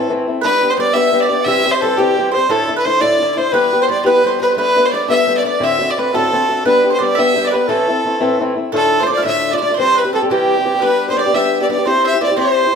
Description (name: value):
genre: celtic folk, Celtic jig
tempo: 116 BPM (dotted quarters)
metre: 6/8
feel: straight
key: D dorian from 8.7 s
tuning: A4 = 440 Hz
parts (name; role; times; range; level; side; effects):
- clear fiddle; melody; 0.0-12.8 s; G4 to E5; -16 LUFS; right 1 dB; plate reverb
- mandolin; second line; 0.0-12.8 s; G4 to F5; -21 LUFS; right 5 dB; none
- wooden flute; second line; 0.0-12.7 s; G4 to F#5; -22 LUFS; left 4 dB; none
- fingerpicked swing-style acoustic guitar; accompaniment; 0.0-12.8 s; D2 to C5; -17 LUFS; left 2 dB; none
room: wet studio reverb, RT60 0.6 s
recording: heard from further back in the room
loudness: -12 LUFS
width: side -6 dB against mid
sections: 0.4-8.7 A section; 8.7-12.8 B section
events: none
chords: 0.4 G; 1.5 C; 2.5 Dsus2; 3.5 Em; 4.6 Gadd9; 5.6 D7; 6.7 G; 7.7 Am; 8.7 Dm; 9.8 C; 10.8 G; 11.9 C